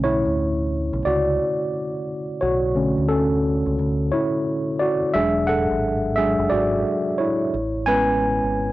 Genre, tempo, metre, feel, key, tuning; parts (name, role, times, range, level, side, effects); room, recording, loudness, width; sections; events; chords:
lo-fi hip hop; 88 BPM; 4/4; swing 63% on 16ths; B dorian; A4 = 438 Hz
mellow tine electric piano; accompaniment; 0.0-8.7 s; D3 to G#5; -20 LUFS; equal; medium stereo tremolo, cassette tape
deep dub fingered electric bass; bass; 0.0-8.7 s; E1 to D2; -26 LUFS; equal; tube saturation
light reverb; home recording on cassette; -19 LUFS; side -17 dB against mid
0.0-8.7 A section
tine electric piano solo 0.0-8.7
0.0 Bm9; 5.1 E9; 7.5 Amaj9